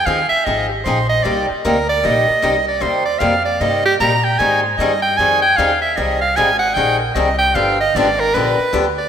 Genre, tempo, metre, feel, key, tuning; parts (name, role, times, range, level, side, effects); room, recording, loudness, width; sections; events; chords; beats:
acoustic string swing (jazz manouche); 152 BPM; 4/4; swing 62% on 8ths; C minor; A4 = 440 Hz
clear soprano saxophone; second line; 0.0-9.1 s; G4 to Bb5; -15 LUFS; right 2 dB
upright bass; bass; 0.0-9.1 s; G1 to Bb2; -24 LUFS; equal
picked steel-string acoustic guitar; accompaniment; 0.1-8.8 s; C3 to Ab4; -19 LUFS; left 3 dB
wet lush hall reverb, RT60 2.3 s; rough home demo mix; -13 LUFS; side -8 dB against mid
0.0-9.1 A section
soprano saxophone solo 0.0-9.1
0.0 Fm7; 1.3 Cm9; 4.4 Abmaj7; 7.6 G7#9
0.07 0.47 0.86 | 1.25 1.65 2.04 2.43 | 2.83 3.22 3.62 4.01 | 4.40 4.80 5.19 5.58 | 5.98 6.37 6.76 7.16 | 7.55 7.95 8.34 8.73